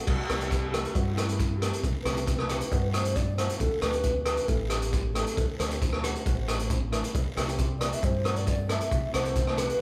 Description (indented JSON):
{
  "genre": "calypso",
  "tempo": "136 BPM",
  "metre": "4/4",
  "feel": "straight",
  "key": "unclear",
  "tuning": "A4 = 440 Hz",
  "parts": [
    { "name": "mellow hollow alto flute", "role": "melody", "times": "0.0-9.8 s", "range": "E4 to E5", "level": "-35 LUFS", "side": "equal", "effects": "none" },
    { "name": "steel pan", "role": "accompaniment", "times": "0.0-9.7 s", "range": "A3 to A4", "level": "-42 LUFS", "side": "equal", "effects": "none" },
    { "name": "deep dub fingered electric bass", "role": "bass", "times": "0.1-9.7 s", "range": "A1 to G2", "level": "-34 LUFS", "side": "equal", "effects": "none" },
    { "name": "crunchy breakbeat drum kit", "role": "drums", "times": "0.1-9.8 s", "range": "crash cymbal, hi-hat, kick drum, rim click", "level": "-30 LUFS", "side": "equal", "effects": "none" },
    { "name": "guiro", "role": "percussion", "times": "0.1-9.7 s", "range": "none", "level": "-47 LUFS", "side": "equal", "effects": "none" }
  ],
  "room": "moderate large studio reverb, RT60 0.8 s",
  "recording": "band playing live in one room",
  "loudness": "-28 LUFS",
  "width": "mono",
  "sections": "0.1-9.8 A section",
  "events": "none",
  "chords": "0.1 C; 3.6 Dsus4; 7.1 C"
}